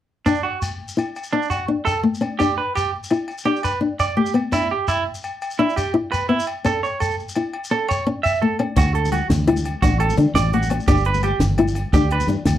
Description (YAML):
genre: highlife guitar band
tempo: 113 BPM (dotted quarters)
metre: 12/8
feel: straight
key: D major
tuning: A4 = 442 Hz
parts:
  - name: nylon-string guitar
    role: accompaniment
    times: 0.3-12.5 s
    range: A3 to E4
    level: -20 LUFS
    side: left 4 dB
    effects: none
  - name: semi-hollow electric guitar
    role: arpeggios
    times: 0.3-12.3 s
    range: D4 to E5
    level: -22 LUFS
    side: right 5 dB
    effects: slapback echo
  - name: agogo bells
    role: percussion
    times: 0.3-12.6 s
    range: none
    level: -32 LUFS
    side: left 4 dB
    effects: none
  - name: shekere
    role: percussion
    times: 0.3-12.6 s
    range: none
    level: -29 LUFS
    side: left 1 dB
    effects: none
  - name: fingered electric bass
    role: bass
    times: 8.8-12.6 s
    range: G1 to D3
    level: -20 LUFS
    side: right 1 dB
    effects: none
  - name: compact cocktail drum kit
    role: drums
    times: 8.8-12.5 s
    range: hi-hat, kick drum, snare drum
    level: -20 LUFS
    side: equal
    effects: none
  - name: congas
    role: percussion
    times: 8.8-12.6 s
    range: none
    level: -28 LUFS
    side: left 7 dB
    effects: none
room: little or no reverb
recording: dry, close 1970s-style studio recording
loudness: -18 LUFS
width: side -12 dB against mid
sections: 0.3-8.8 A section; 8.8-12.6 B section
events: none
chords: 0.3 D; 2.4 G; 4.5 Em; 6.6 A; 8.8 D; 10.9 G